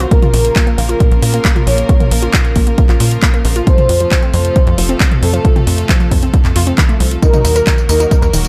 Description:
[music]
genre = uplifting trance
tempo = 135 BPM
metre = 4/4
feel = straight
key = Bb harmonic minor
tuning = A4 = 440 Hz
[part]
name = rich chamber string section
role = sustained chords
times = 0.0-8.5 s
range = C3 to Bb4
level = -24 LUFS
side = equal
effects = sidechain pumping
[part]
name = unison pluck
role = arpeggios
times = 0.0-8.4 s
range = F2 to Bb4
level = -23 LUFS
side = equal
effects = sidechain pumping, tape echo
[part]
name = tight sequencer bass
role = bass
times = 0.0-8.5 s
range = Eb1 to Bb2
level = -17 LUFS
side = equal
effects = tube saturation, sidechain pumping
[part]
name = big-room dance drum kit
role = drums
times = 0.0-8.5 s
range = handclaps, hi-hat, tambourine, toms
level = -21 LUFS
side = equal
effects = sidechain pumping on hats, sidechain pumping on toms, sidechain pumping on perc
[part]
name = warm velvety synth lead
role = second line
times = 0.1-8.3 s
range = A4 to Db5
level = -20 LUFS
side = equal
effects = chorus, tape echo
[part]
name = electronic kick drum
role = drums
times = 0.1-8.2 s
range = none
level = -14 LUFS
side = equal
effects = none
[sound]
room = digital ambience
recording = none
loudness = -12 LUFS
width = mono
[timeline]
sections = 0.0-8.5 A section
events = none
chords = 0.1 Bbm; 3.7 F; 7.2 Ebm

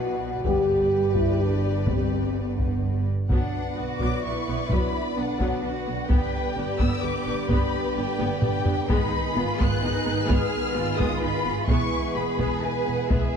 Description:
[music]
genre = cinematic, epic orchestral film score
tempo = 128 BPM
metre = 3/4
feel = straight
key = B minor from 3.3 s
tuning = A4 = 440 Hz
[part]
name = warm symphonic violin section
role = melody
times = 0.0-13.4 s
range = D5 to F#6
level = -32 LUFS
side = left 4 dB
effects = none
[part]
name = warm symphonic violin section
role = second line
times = 0.0-13.4 s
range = G#4 to D5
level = -33 LUFS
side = left 4 dB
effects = none
[part]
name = warm symphonic viola section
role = accompaniment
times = 0.0-13.3 s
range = F#3 to G4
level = -32 LUFS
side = right 1 dB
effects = none
[part]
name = dark French horn section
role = sustained chords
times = 0.0-13.4 s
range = B3 to B4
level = -30 LUFS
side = left 3 dB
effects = none
[part]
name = rich symphonic cello section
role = bass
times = 0.0-13.4 s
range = G2 to B4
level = -32 LUFS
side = right 3 dB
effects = none
[part]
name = warm symphonic double bass section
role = bass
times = 0.0-13.2 s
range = E1 to B1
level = -30 LUFS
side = right 4 dB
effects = none
[part]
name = taiko ensemble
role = drums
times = 0.4-13.4 s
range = none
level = -26 LUFS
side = left 1 dB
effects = none
[part]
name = mellow trombone section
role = sustained chords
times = 0.5-13.4 s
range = D3 to B3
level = -33 LUFS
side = right 4 dB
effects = none
[sound]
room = moderate scoring stage reverb, RT60 1.8 s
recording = dark, warm production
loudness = -22 LUFS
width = side -7 dB against mid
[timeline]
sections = 0.0-3.3 A section; 3.3-13.4 B section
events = drum fill 8.2-8.9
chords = 0.5 G; 3.3 Bm; 6.1 G; 8.9 G#m; 11.7 E

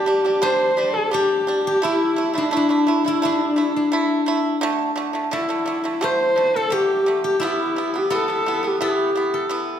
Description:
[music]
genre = mongolian traditional, Mongolian folk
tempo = 86 BPM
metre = 4/4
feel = straight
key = G zhi mode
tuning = A4 = 441 Hz
[part]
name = dark horsehead fiddle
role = melody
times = 0.0-9.5 s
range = D4 to C5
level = -20 LUFS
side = left 1 dB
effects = none
[part]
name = steel-string zither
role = second line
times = 0.0-9.8 s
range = D4 to C5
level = -24 LUFS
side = left 2 dB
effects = none
[part]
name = pipa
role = arpeggios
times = 0.0-9.8 s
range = D3 to E4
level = -23 LUFS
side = right 4 dB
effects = slapback echo
[sound]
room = wet recital hall reverb, RT60 1.4 s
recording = none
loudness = -18 LUFS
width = side -9 dB against mid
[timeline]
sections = 0.0-9.8 A section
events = none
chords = 0.0 G5; 1.8 A5; 4.6 D5; 7.4 E5

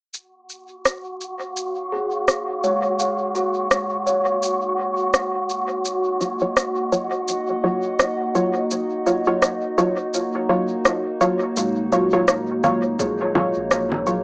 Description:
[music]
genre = ambient dub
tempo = 84 BPM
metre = 4/4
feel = swing 58% on 16ths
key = Eb minor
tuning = A4 = 440 Hz
[part]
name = warbly tape-like pad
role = sustained chords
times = 1.6-14.2 s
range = Bb3 to Gb5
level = -25 LUFS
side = equal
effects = chorus, built-in reverb, phaser, cassette tape
[part]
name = electronic shaker, rim click and congas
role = drums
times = 0.1-14.2 s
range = none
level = -21 LUFS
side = equal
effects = small room ambience, cassette tape, dub echo
[part]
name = wind-like tuned noise texture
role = texture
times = 0.9-11.6 s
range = Gb4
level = -26 LUFS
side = equal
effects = built-in reverb, cassette tape
[part]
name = kalimba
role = arpeggios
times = 1.9-7.3, 11.6-14.2 s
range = Ab3 to F5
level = -26 LUFS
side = equal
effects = low-pass filter, cassette tape, dub echo
[part]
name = filtered dub chord stab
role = stabs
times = 6.2-14.2 s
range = Gb3 to Db5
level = -21 LUFS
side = equal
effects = wide subtle chorus, cassette tape, dub echo
[part]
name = soft dub sub bass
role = bass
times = 11.6-14.2 s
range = Eb1 to Bb1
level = -37 LUFS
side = equal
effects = none
[part]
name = electronic kick drum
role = drums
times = 13.0-13.2 s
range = none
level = -30 LUFS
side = equal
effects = overdrive, small room ambience, cassette tape
[sound]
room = moderate booth ambience, RT60 0.2 s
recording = home recording on cassette, small speaker sound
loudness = -19 LUFS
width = side -31 dB against mid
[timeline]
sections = 0.1-11.6 A section; 11.6-14.2 B section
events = filter sweep on kalimba 0.1-11.6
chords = 0.1 Ebm9

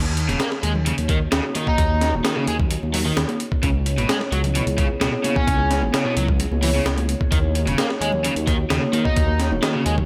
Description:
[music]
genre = breakbeat, breaks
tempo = 130 BPM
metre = 4/4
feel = straight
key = Eb phrygian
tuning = A4 = 440 Hz
[part]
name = dark analog pad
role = sustained chords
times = 0.3-10.1 s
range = Bb3 to Db5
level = -30 LUFS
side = equal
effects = chorus, phaser, sidechain pumping
[part]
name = dark detuned saw bass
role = bass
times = 0.0-10.1 s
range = Eb1 to Eb2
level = -25 LUFS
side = equal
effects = none
[part]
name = breakbeat sampler-style drum kit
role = drums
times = 0.2-10.1 s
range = hi-hat, kick drum, snare drum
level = -25 LUFS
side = equal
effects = none
[part]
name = crunchy overdriven guitar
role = riff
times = 0.3-9.9 s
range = Cb3 to Eb4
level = -27 LUFS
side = equal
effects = vintage 12-bit sampler grit, delay
[part]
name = congas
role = percussion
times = 0.3-10.1 s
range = none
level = -33 LUFS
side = equal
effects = none
[sound]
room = light reverb, digital ambience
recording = none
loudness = -21 LUFS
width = mono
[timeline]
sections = 0.0-10.1 A section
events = none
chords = 0.0 Ebm7; 3.6 Dbm7; 7.3 Ebm7

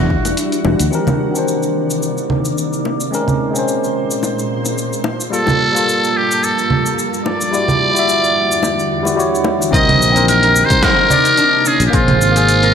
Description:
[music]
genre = sunset chillout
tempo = 109 BPM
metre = 4/4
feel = swing 54% on 16ths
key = unclear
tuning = A4 = 445 Hz
[part]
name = trumpet with metal mute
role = melody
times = 0.0-0.3, 5.3-12.7 s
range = F4 to Eb5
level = -15 LUFS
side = equal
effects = digital delay
[part]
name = tine electric piano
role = accompaniment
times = 0.0-12.7 s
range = Eb3 to E5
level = -19 LUFS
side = equal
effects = auto-pan, ping-pong delay
[part]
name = shimmering ambient pad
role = sustained chords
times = 0.0-12.7 s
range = E2 to A5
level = -22 LUFS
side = left 1 dB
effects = chorus, built-in reverb
[part]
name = sustaining fretless electric bass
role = bass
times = 0.0-0.9, 9.7-12.7 s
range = E1 to E2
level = -16 LUFS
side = equal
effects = none
[part]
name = electronic kick drum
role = drums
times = 0.1-0.2, 9.7-12.1 s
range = none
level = -19 LUFS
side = equal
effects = overdrive
[part]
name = dusty soul sampler-style drum kit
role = drums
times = 0.3-12.7 s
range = cabasa, congas, hi-hat, snare drum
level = -21 LUFS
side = right 2 dB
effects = gated reverb
[part]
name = bongos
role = percussion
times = 0.3-9.6 s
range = none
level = -24 LUFS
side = left 4 dB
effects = none
[part]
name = concert harp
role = arpeggios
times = 9.7-12.7 s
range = C4 to D5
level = -21 LUFS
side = left 1 dB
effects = ping-pong delay
[sound]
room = wet plate reverb, RT60 1.9 s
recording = bright 1980s-style digital production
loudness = -12 LUFS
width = side -7 dB against mid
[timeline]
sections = 0.9-9.7 A section; 9.7-12.7 B section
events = none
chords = 0.0 Em9; 0.9 Cm9; 2.9 Bbm9; 5.1 Gm9; 7.5 Em9; 9.7 Cm9; 11.7 Bbm9

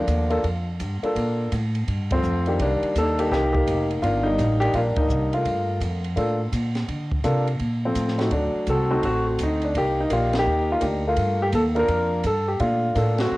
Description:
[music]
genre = jazz piano trio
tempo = 168 BPM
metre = 4/4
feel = swing 64% on 8ths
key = G minor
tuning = A4 = 440 Hz
[part]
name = warm concert grand piano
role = melody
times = 0.0-13.4 s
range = Eb3 to D5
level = -22 LUFS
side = equal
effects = cassette tape
[part]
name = upright bass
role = bass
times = 0.0-13.4 s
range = F1 to D3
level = -25 LUFS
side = equal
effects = none
[part]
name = compact cocktail drum kit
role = drums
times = 0.1-13.2 s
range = hi-hat, kick drum, ride cymbal, snare drum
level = -32 LUFS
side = equal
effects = cassette tape
[sound]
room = light reverb, small room ambience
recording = home recording on cassette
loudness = -20 LUFS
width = side -19 dB against mid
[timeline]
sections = 0.0-13.4 A section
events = band accent 2.1, 4.9, 10.3, 13.1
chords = 0.0 Gm9; 8.3 D7b9; 9.7 Cm9; 11.2 Gm9

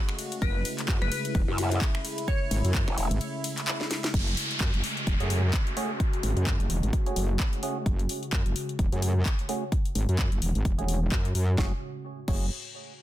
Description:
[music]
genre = bass house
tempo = 129 BPM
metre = 4/4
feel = swing 57% on 16ths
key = F# minor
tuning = A4 = 438 Hz
[part]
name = sweeping resonant pad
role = sustained chords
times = 0.0-11.8 s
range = C#3 to F#4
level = -36 LUFS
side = left 1 dB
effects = chorus, phaser, sidechain pumping
[part]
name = house drum kit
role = drums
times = 0.1-12.4 s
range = crash cymbal, finger snaps, handclaps, hi-hat, ride cymbal, snare drum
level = -34 LUFS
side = left 1 dB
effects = overdrive, small room ambience
[part]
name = glassy wavetable pluck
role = melody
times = 0.4-2.6 s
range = B4 to C#5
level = -37 LUFS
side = left 2 dB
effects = chorus, digital delay
[part]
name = metallic wobble bass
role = bass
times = 0.4-12.5 s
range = E1 to F#2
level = -26 LUFS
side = equal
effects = chorus, tube saturation, sidechain pumping
[part]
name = electronic kick drum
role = drums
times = 0.4-12.4 s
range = none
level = -27 LUFS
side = equal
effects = overdrive, small room ambience
[part]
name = growl bass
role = bass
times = 0.9-3.1 s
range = E1 to F#2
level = -27 LUFS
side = equal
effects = chorus, overdrive, sidechain pumping
[part]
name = downlifter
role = sound effects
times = 4.1-7.9 s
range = none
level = -35 LUFS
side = equal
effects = none
[part]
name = percussive organ stab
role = stabs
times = 5.2-12.5 s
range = A3 to G#4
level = -36 LUFS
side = right 3 dB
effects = analog chorus, cassette tape, sidechain pumping, digital delay
[sound]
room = little or no reverb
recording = dense, heavily limited modern master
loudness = -25 LUFS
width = side -14 dB against mid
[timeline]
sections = 0.0-4.1 A section; 4.1-11.6 B section; 11.6-13.0 C section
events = drop 0.0-4.1; break 3.2-4.1; drum fill 3.8-4.1; filter sweep on synth stab 4.1-11.6; filter sweep on analog synth pad 4.1-11.6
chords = 0.0 F#madd9

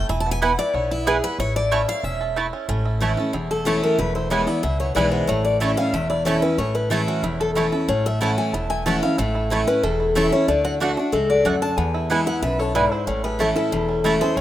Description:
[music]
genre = bluegrass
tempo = 185 BPM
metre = 4/4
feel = straight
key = A major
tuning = A4 = 436 Hz
[part]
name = bluegrass banjo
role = melody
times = 0.0-14.4 s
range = E3 to A4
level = -31 LUFS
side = right 5 dB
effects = none
[part]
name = picked steel-string acoustic guitar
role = accompaniment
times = 0.0-14.4 s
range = E2 to A5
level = -23 LUFS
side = equal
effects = none
[part]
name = upright bass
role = bass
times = 0.0-14.4 s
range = E1 to E2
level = -27 LUFS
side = equal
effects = none
[part]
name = mandolin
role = stabs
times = 0.4-14.1 s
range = A3 to A5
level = -26 LUFS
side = right 4 dB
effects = none
[part]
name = picked steel-string acoustic guitar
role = melody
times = 3.5-14.4 s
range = E4 to A5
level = -23 LUFS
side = left 3 dB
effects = none
[part]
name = lap resonator guitar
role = second line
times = 12.4-14.4 s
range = E4 to B4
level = -29 LUFS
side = left 2 dB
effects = none
[sound]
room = light reverb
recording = rough home demo mix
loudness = -19 LUFS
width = side -13 dB against mid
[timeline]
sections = 0.0-2.7 A section; 2.7-14.4 B section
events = steel-string acoustic guitar solo 0.0-2.7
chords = 0.1 E; 1.4 A; 4.0 E; 5.3 A; 10.5 D; 11.8 E; 13.1 A

